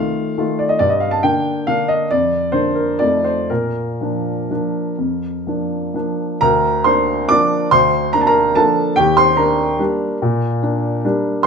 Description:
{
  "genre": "classical, piano waltz",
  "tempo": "119-152 BPM",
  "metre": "3/4",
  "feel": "rubato",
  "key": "Bb major",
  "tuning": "A4 = 441 Hz",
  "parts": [
    { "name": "warm upright piano", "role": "solo", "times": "0.0-11.5 s", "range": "D2 to D6", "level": "-14 LUFS", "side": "equal", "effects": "none" }
  ],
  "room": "moderate recital hall reverb, RT60 1.4 s",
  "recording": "close, detailed microphones",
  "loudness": "-15 LUFS",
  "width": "side -5 dB against mid",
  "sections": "0.0-6.4 A section; 6.4-11.5 B section",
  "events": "none",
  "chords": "0.0 F7; 0.8 Gm; 2.1 Bb/F; 3.0 F7; 3.5 Bb; 6.4 Bb/D; 9.0 Ebmaj7"
}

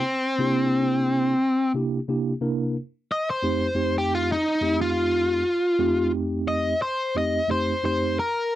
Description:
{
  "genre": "blues",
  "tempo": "89 BPM",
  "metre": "4/4",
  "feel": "swing 55% on 16ths",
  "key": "unclear",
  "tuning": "A4 = 441 Hz",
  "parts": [
    { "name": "biting overdriven guitar", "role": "melody", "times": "0.0-8.6 s", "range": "C4 to Eb5", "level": "-22 LUFS", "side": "left 1 dB", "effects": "none" },
    { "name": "mellow tine electric piano", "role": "accompaniment", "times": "0.4-8.2 s", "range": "F2 to Bb4", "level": "-25 LUFS", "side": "right 2 dB", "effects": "medium stereo tremolo" }
  ],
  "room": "little or no reverb",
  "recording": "dry, close 1970s-style studio recording",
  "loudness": "-21 LUFS",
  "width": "side -14 dB against mid",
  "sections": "0.0-8.6 A section",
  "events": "overdriven electric guitar solo 0.0-8.6",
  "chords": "0.0 C9; 2.8 F9"
}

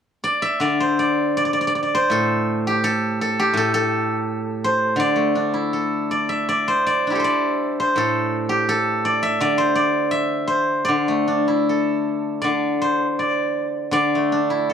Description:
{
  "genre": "chinese traditional, Chinese solo plucked strings",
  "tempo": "82 BPM",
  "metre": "2/4",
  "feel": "rubato",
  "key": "D shang mode",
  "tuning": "A4 = 442 Hz",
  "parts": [
    { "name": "steel-string zither", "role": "solo", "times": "0.2-14.7 s", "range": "A2 to E5", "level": "-18 LUFS", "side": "equal", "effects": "none" }
  ],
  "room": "light reverb",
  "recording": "cassette tape",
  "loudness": "-18 LUFS",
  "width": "side -8 dB against mid",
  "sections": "0.6-12.4 A section; 12.4-14.7 B section",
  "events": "none",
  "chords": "none"
}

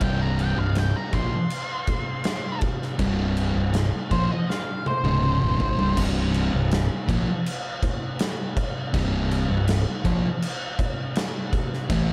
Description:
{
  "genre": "stoner and doom metal",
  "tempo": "81 BPM",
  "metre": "4/4",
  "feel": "straight",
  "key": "unclear",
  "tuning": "A4 = 439 Hz",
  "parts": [
    { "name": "octave-fuzz lead guitar", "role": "melody", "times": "0.0-5.9 s", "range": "C5 to C6", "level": "-32 LUFS", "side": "equal", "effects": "distortion, analog delay" },
    { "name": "thick fuzz guitar", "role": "riff", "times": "0.0-12.1 s", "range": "C2 to A3", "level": "-29 LUFS", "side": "equal", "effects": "distortion" },
    { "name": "thick fuzz guitar", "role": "riff", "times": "0.0-12.1 s", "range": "C2 to A3", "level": "-31 LUFS", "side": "equal", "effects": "none" },
    { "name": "fuzz fingered electric bass", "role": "bass", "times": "0.0-12.1 s", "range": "C1 to Bb1", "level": "-30 LUFS", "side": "equal", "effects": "overdrive" },
    { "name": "oversized low-tuned drum kit", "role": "drums", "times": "0.0-12.1 s", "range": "crash cymbal, kick drum, snare drum, toms", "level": "-29 LUFS", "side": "equal", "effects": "none" }
  ],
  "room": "little or no reverb",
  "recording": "none",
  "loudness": "-24 LUFS",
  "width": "mono",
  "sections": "0.0-6.0 A section; 6.0-12.1 B section",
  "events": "lead electric guitar solo 0.0-6.0; drum fill 4.5-6.0",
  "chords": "0.0 Cm; 6.0 C5"
}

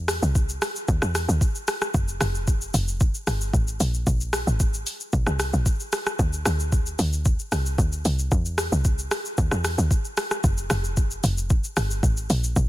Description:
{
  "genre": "amapiano",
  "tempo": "113 BPM",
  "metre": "4/4",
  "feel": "straight",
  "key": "unclear",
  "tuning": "A4 = 445 Hz",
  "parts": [
    { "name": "tight log drum bass", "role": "bass", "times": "0.0-12.7 s", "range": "F1 to E2", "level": "-24 LUFS", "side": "equal", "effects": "none" },
    { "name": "smooth R&B drum kit", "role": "drums", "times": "0.1-12.7 s", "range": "hi-hat, kick drum, rim click, shaker", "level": "-24 LUFS", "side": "equal", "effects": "none" }
  ],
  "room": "little or no reverb",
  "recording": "dense, heavily limited modern master",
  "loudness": "-21 LUFS",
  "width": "side -16 dB against mid",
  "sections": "0.0-12.7 A section",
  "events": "none",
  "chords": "none"
}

